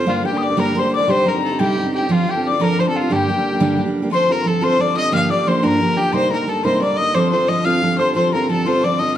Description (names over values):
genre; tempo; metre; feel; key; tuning
celtic folk, Celtic jig; 119 BPM (dotted quarters); 6/8; straight; unclear; A4 = 439 Hz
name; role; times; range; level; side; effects
clear fiddle; melody; 0.0-9.2 s; F4 to F5; -20 LUFS; equal; none
picked steel-string acoustic guitar; accompaniment; 0.0-9.2 s; G2 to Bb4; -19 LUFS; right 2 dB; none
hand-pumped harmonium; drone; 0.0-9.2 s; G2 to D3; -29 LUFS; left 1 dB; none
tin whistle; second line; 0.1-9.2 s; F5 to F6; -22 LUFS; left 8 dB; none
room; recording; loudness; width
moderate recital hall reverb, RT60 1.2 s; dark, warm production; -15 LUFS; side -11 dB against mid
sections
0.0-4.1 A section; 4.1-9.2 B section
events
none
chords
0.1 Gm; 1.1 Cm; 2.1 F; 3.1 Gm; 4.1 F; 5.1 Gm7; 6.1 Cm7; 7.1 F